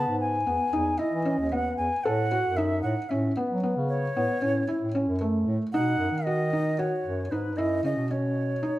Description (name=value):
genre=contemporary instrumental, chamber music in an uneven meter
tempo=228 BPM (eighths)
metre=7/8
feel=straight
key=B mixolydian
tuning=A4 = 439 Hz
part: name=mellow jazz flute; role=melody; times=0.0-8.8 s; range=B4 to A5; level=-29 LUFS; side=equal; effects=none
part: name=felt-muted upright piano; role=arpeggios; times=0.0-8.8 s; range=A3 to A4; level=-28 LUFS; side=left 1 dB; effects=none
part: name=breathy bass clarinet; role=bass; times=0.0-8.8 s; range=D#2 to F#3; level=-30 LUFS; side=equal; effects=none
room=moderate recital hall reverb, RT60 1.5 s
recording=none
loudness=-24 LUFS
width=side -16 dB against mid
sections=0.0-5.7 A section; 5.7-8.8 B section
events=none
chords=0.0 Emaj7; 2.0 A6; 5.7 B; 7.6 F#7(no3)